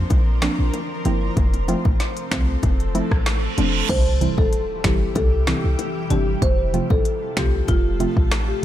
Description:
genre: dancehall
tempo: 95 BPM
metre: 4/4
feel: straight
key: F major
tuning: A4 = 439 Hz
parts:
  - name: granular cloud pad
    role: sustained chords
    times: 0.0-8.6 s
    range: C3 to C5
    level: -29 LUFS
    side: left 1 dB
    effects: built-in reverb, sidechain pumping
  - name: clean 808-style bass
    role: bass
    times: 0.0-8.5 s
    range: F1 to C2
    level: -22 LUFS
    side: equal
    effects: none
  - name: afro-pop drum kit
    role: drums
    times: 0.1-8.5 s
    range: crash cymbal, finger snaps, hi-hat, kick drum, rim click, snare drum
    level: -21 LUFS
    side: equal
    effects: none
  - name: bongos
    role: percussion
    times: 0.1-8.5 s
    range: none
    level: -32 LUFS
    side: left 6 dB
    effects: none
  - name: soft round pluck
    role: accompaniment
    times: 0.4-8.1 s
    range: C3 to F4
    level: -26 LUFS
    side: right 2 dB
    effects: chorus
  - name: reverse cymbal and impact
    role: sound effects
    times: 3.2-6.4 s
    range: none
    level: -30 LUFS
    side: right 4 dB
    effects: none
  - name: marimba with medium mallets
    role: melody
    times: 3.9-8.6 s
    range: F4 to C5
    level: -25 LUFS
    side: left 1 dB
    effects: none
room: digital ambience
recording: none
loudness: -18 LUFS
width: side -12 dB against mid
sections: 0.0-3.9 A section; 3.9-8.6 B section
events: reverse cymbal 3.2-3.9; impact 3.9-6.4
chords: 0.0 Bbadd9; 1.4 F; 3.9 C; 6.4 F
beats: 0.10 0.74 | 1.37 2.00 2.63 3.26 | 3.89 4.53 5.16 5.79 | 6.42 7.05 7.68 8.31

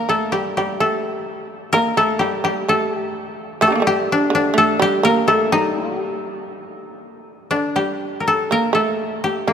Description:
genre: japanese traditional, Japanese chamber music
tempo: 60-65 BPM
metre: 2/4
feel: rubato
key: G hirajoshi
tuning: A4 = 437 Hz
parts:
  - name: koto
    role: melody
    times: 0.0-9.5 s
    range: D4 to Bb4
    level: -18 LUFS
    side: left 2 dB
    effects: none
  - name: shamisen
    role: second line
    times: 0.0-9.5 s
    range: D3 to Bb4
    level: -22 LUFS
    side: right 4 dB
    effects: none
room: wet cathedral reverb, RT60 5.1 s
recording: none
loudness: -16 LUFS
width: side -8 dB against mid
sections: 0.0-7.5 A section; 7.5-9.5 B section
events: none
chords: none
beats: 0.82 | 1.76 2.68 | 3.62 4.58 | 5.54 6.52 | 7.52 8.50 | 9.47

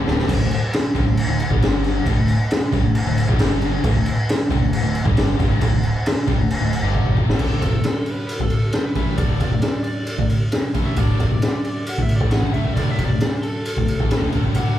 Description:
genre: hard rock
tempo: 135 BPM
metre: 4/4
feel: straight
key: unclear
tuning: A4 = 440 Hz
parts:
  - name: sludgy distorted guitar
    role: riff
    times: 0.0-14.8 s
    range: D2 to A3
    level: -27 LUFS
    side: right 5 dB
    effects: overdrive
  - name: tight distorted guitar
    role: riff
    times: 0.0-14.8 s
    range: D2 to A3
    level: -27 LUFS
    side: left 6 dB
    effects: distortion
  - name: upright bass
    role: bass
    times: 0.0-14.8 s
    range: D1 to D2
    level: -27 LUFS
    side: right 1 dB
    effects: none
  - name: raw garage drum kit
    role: drums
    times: 0.1-14.7 s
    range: crash cymbal, kick drum, ride cymbal, snare drum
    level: -18 LUFS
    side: equal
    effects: none
  - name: biting lead guitar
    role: melody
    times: 7.4-14.8 s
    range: A4 to F#5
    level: -30 LUFS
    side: equal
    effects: overdrive
room: light reverb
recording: band playing live in one room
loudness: -17 LUFS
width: side -12 dB against mid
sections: 0.3-7.4 A section; 7.4-14.8 B section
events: drum fill 0.0, 7.0-7.4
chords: 0.3 D5; 1.5 G5; 2.1 D5; 3.3 G5; 3.8 D5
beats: | 0.29 0.73 1.18 1.62 | 2.06 2.51 2.95 3.40 | 3.84 4.29 4.73 5.17 | 5.62 6.06 6.51 6.95 | 7.40 7.84 8.29 8.74 | 9.19 9.63 10.08 10.53 | 10.97 11.42 11.87 12.32 | 12.76 13.21 13.66 14.11 | 14.55

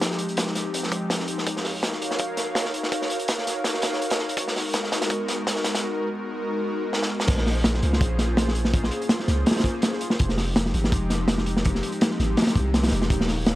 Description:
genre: drum and bass, jungle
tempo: 165 BPM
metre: 4/4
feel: straight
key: Bb minor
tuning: A4 = 440 Hz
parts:
  - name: airy breathy pad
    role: sustained chords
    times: 0.0-13.6 s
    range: F3 to F5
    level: -27 LUFS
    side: equal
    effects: chorus
  - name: long sustained 808-style bass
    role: bass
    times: 0.0-13.6 s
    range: Eb1 to Db2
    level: -25 LUFS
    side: equal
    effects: tube saturation, high-pass filter
  - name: crunchy breakbeat drum kit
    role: drums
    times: 0.0-13.6 s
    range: crash cymbal, hi-hat, kick drum, snare drum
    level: -23 LUFS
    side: equal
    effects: high-pass filter on kick, high-pass filter on hats, high-pass filter on cymbals, high-pass filter on snare, high-pass filter on room
room: light reverb, small room ambience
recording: dry, gritty hardware recording, vinyl crackle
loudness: -22 LUFS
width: side -16 dB against mid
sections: 0.0-7.3 A section; 7.3-13.6 B section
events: build-up 0.0-7.3; drum fill 6.9-7.3; drop 7.3-13.6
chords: 0.0 Fm7; 1.5 Ebm7; 4.4 Abm7; 7.3 Bbm7; 10.2 Fm7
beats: | 0.01 0.38 0.74 1.10 | 1.47 1.83 2.19 2.56 | 2.92 3.29 3.65 4.01 | 4.38 4.74 5.10 5.47 | 5.83 6.20 6.56 6.92 | 7.29 7.65 8.01 8.38 | 8.74 9.10 9.47 9.83 | 10.20 10.56 10.92 11.29 | 11.65 12.01 12.38 12.74 | 13.10 13.47

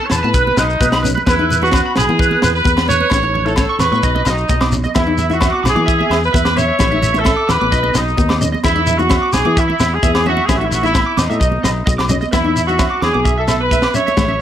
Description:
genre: highlife guitar band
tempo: 130 BPM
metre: 4/4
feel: straight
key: E major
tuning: A4 = 439 Hz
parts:
  - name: bright horn section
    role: melody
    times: 0.0-14.4 s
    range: D#4 to C#5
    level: -17 LUFS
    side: equal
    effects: plate reverb
  - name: electric guitar at the edge of break-up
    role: arpeggios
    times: 0.0-14.3 s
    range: B4 to D6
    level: -21 LUFS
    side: right 4 dB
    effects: analog chorus, plate reverb, analog delay
  - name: fingered electric bass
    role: bass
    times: 0.1-14.4 s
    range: A1 to E3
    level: -20 LUFS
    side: equal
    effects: none
  - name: tight funk drum kit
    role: drums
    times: 0.1-14.3 s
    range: kick drum, snare drum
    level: -18 LUFS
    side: equal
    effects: none
  - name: agogo bells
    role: percussion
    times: 0.1-14.3 s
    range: none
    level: -26 LUFS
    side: left 5 dB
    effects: none
  - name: shekere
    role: percussion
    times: 0.1-14.3 s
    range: none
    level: -23 LUFS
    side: left 3 dB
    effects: none
  - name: fingerpicked steel-string acoustic guitar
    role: accompaniment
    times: 0.2-14.4 s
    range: A3 to E4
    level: -23 LUFS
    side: left 6 dB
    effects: plate reverb
  - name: congas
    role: percussion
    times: 0.5-14.3 s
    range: none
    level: -26 LUFS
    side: right 7 dB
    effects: none
room: light reverb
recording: none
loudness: -12 LUFS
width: side -10 dB against mid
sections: 0.0-12.3 A section; 12.3-14.4 B section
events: none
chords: 0.3 B; 1.3 E; 3.1 A; 4.0 B; 5.0 E; 6.8 A; 7.7 B; 8.6 E5; 10.5 A5; 11.4 B; 12.3 E5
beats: 0.34 0.81 | 1.27 1.73 2.19 2.65 | 3.12 3.58 4.04 4.50 | 4.96 5.42 5.88 6.34 | 6.80 7.26 7.72 8.19 | 8.65 9.11 9.57 10.03 | 10.49 10.95 11.41 11.87 | 12.33 12.79 13.25 13.71 | 14.17

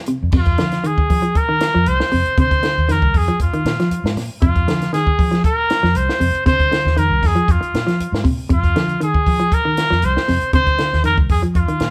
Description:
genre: afrobeat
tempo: 118 BPM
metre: 4/4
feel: straight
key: F dorian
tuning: A4 = 439 Hz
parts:
  - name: semi-hollow electric guitar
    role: arpeggios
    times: 0.1-11.9 s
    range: C3 to F3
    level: -24 LUFS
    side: equal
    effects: none
  - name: compact cocktail drum kit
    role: drums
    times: 0.1-11.9 s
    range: crash cymbal, hi-hat, kick drum, snare drum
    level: -21 LUFS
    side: equal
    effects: none
  - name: vintage muted fingered electric bass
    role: bass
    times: 0.2-11.9 s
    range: C2 to F3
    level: -22 LUFS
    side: equal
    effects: none
  - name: clear trumpet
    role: melody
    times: 0.4-11.9 s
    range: F4 to C5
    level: -21 LUFS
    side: equal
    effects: none
room: moderate studio reverb, RT60 0.8 s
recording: band playing live in one room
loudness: -17 LUFS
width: mono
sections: 0.3-11.9 A section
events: none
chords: 0.3 F7(no3)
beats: | 0.33 0.84 1.35 1.86 | 2.38 2.89 3.40 3.91 | 4.42 4.93 5.44 5.95 | 6.46 6.97 7.48 7.99 | 8.50 9.01 9.52 10.03 | 10.53 11.04 11.55

